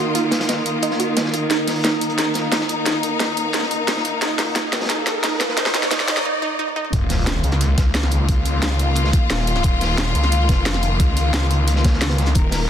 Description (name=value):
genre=dark technical drum and bass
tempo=177 BPM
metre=4/4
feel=straight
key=unclear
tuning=A4 = 440 Hz
part: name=clear studio string section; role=sustained chords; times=0.0-12.7 s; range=Eb3 to Bb4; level=-24 LUFS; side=left 2 dB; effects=sidechain pumping
part: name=wide unison pluck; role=arpeggios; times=0.0-6.8 s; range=Eb4 to Eb5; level=-26 LUFS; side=right 3 dB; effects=sidechain pumping, ping-pong delay
part: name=warbly tape-like pad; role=texture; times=0.0-6.3 s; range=Eb4 to Eb6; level=-27 LUFS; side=right 2 dB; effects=chorus, built-in reverb, sidechain pumping
part: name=crunchy breakbeat drum kit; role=drums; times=0.1-12.6 s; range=hi-hat, snare drum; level=-28 LUFS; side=equal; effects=high-pass filter on hats, high-pass filter on snare, high-pass filter on room
part: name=drum and bass drum kit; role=drums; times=0.1-12.6 s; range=hi-hat, snare drum, toms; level=-23 LUFS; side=equal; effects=overdrive, high-pass filter on snare, high-pass filter on hats, high-pass filter on toms, high-pass filter on room
part: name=riser and impact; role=sound effects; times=3.0-8.3 s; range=none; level=-26 LUFS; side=right 1 dB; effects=none
part: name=snarling distorted saw bass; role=bass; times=6.9-12.7 s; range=Eb1 to Db2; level=-19 LUFS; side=equal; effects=distortion, overdrive
part: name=electronic kick drum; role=drums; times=6.9-12.4 s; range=none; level=-18 LUFS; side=equal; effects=overdrive
room=light reverb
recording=dense, heavily limited modern master, high-pass filter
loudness=-17 LUFS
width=side -9 dB against mid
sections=0.0-6.9 A section; 6.9-12.7 B section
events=build-up 0.0-6.9; filter sweep on synth arpeggio sound 0.0-6.9; drum fill 1.5-6.3, 6.7; riser 3.0-6.3; break 6.3-6.9; drop 6.9-12.7; impact 6.9-8.3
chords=0.0 Eb5